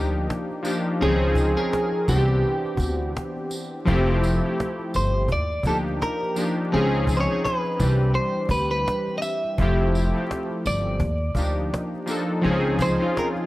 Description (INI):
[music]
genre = lo-fi hip hop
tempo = 84 BPM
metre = 4/4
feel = swing 56% on 16ths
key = unclear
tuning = A4 = 438 Hz
[part]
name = clean electric guitar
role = melody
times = 0.0-13.3 s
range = G4 to E5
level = -26 LUFS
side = equal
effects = none
[part]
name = warm analog keys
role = accompaniment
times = 0.0-13.5 s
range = Eb3 to Bb4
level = -24 LUFS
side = left 1 dB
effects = chorus, cassette tape
[part]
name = upright bass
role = bass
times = 0.0-13.0 s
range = F1 to Eb2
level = -24 LUFS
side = equal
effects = none
[part]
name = cajon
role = drums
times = 0.1-13.4 s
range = none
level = -30 LUFS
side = equal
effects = none
[part]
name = tambourine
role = percussion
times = 0.6-13.0 s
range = none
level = -40 LUFS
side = right 2 dB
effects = none
[sound]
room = small room ambience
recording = vinyl crackle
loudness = -21 LUFS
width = side -17 dB against mid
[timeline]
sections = 0.0-13.5 A section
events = none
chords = 0.0 Ebmaj9; 1.0 Dbmaj9; 2.1 Cmaj9; 3.9 Fmaj9; 5.3 Ebmaj9; 6.7 Dbmaj9; 7.8 Cadd9; 9.6 Fmaj9; 11.0 Ebmaj9; 12.4 Dbmaj9